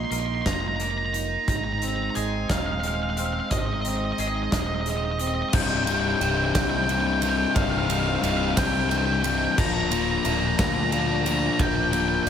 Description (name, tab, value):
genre	post-rock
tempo	59 BPM (dotted quarters)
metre	6/8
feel	straight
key	C minor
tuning	A4 = 442 Hz
part	octave-fuzz lead guitar	melody	0.0-12.3 s	Eb5 to C6	-27 LUFS	right 1 dB	distortion, slapback echo
part	clear studio string section	sustained chords	0.0-12.3 s	F3 to Eb4	-34 LUFS	right 4 dB	none
part	twangy electric guitar	arpeggios	0.0-5.5 s	Ab2 to Bb4	-31 LUFS	right 1 dB	wide subtle chorus, slapback echo
part	growling fingered electric bass	bass	0.0-12.3 s	C1 to D2	-29 LUFS	right 1 dB	overdrive
part	big rock drum kit	drums	0.1-12.3 s	crash cymbal, hi-hat, kick drum, ride cymbal, snare drum	-28 LUFS	right 1 dB	none
part	distorted electric guitar	riff	5.5-12.3 s	C2 to Bb3	-26 LUFS	left 9 dB	distortion
room	light reverb, small room ambience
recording	none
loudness	-22 LUFS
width	side -8 dB against mid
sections	0.0-5.5 A section; 5.5-12.3 B section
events	none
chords	0.0 Bb7sus4; 1.5 Ab; 5.5 Cm; 9.6 Bb/D